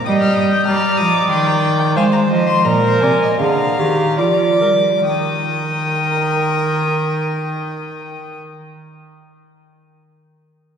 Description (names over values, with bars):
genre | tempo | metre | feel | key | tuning
classical, baroque-style fugue for string quartet | 65-98 BPM | 3/4 | straight | Eb major | A4 = 438 Hz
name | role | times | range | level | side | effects
dark violin | melody | 0.0-8.4 s | G5 to G6 | -22 LUFS | left 5 dB | none
dark violin | second line | 0.0-8.4 s | C5 to Bb5 | -21 LUFS | equal | none
warm viola | accompaniment | 0.1-8.4 s | F4 to Eb5 | -20 LUFS | right 1 dB | none
warm cello | bass | 0.1-8.4 s | Bb2 to Ab3 | -19 LUFS | right 2 dB | none
room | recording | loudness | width
wet church reverb, RT60 3.4 s | none | -14 LUFS | side -7 dB against mid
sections
0.0-5.1 A section; 5.1-10.5 B section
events
slowing down 0.0-5.1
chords
0.1 Eb/G; 0.7 Eb; 2.0 Fm7/Ab; 2.7 Bb7; 5.1 Eb